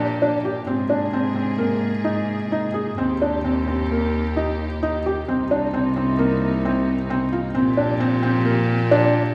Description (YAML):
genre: contemporary instrumental, chamber music in an uneven meter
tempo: 131 BPM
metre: 5/4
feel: straight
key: G phrygian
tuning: A4 = 440 Hz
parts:
  - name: muted studio string section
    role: sustained chords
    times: 0.0-9.3 s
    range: C3 to Ab4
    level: -32 LUFS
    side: equal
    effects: none
  - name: felt-muted upright piano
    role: arpeggios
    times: 0.0-9.2 s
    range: Bb3 to Ab4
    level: -24 LUFS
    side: equal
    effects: none
  - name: rich cello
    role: bass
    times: 0.0-9.3 s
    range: C2 to Bb2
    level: -27 LUFS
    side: equal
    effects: none
room: wet concert hall reverb, RT60 2.4 s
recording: heard from further back in the room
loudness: -21 LUFS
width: mono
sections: 0.0-9.3 A section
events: none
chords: 0.0 Gm7/Bb; 0.7 Abadd9; 3.0 Eb; 5.3 Cm7; 7.5 Gm7/Bb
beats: 0.21 | 0.67 1.13 1.59 2.05 2.51 | 2.98 3.44 3.90 4.36 4.82 | 5.28 5.73 6.19 6.64 7.09 | 7.54 8.00 8.45 8.90